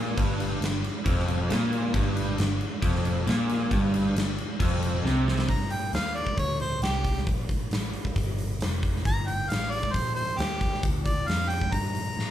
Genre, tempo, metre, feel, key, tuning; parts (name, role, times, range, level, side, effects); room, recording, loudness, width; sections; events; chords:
blues rock power trio and southern rock; 135 BPM; 4/4; straight; G minor; A4 = 439 Hz
raw garage guitar; riff; 0.0-5.5 s; F2 to C3; -27 LUFS; equal; overdrive
vintage muted picked electric bass; bass; 0.0-12.3 s; F1 to A2; -30 LUFS; equal
huge arena drum kit; drums; 0.2-12.3 s; crash cymbal, hi-hat, kick drum, snare drum; -28 LUFS; equal
bright harmonica; melody; 5.5-12.3 s; G4 to Bb5; -30 LUFS; equal; overdrive
moderate large studio reverb, RT60 0.7 s; band playing live in one room, faint mains hum; -24 LUFS; side -11 dB against mid
0.0-5.5 A section; 5.5-12.3 B section
drum fill 5.0-5.5; harmonica solo 5.5-12.3
0.0 Gm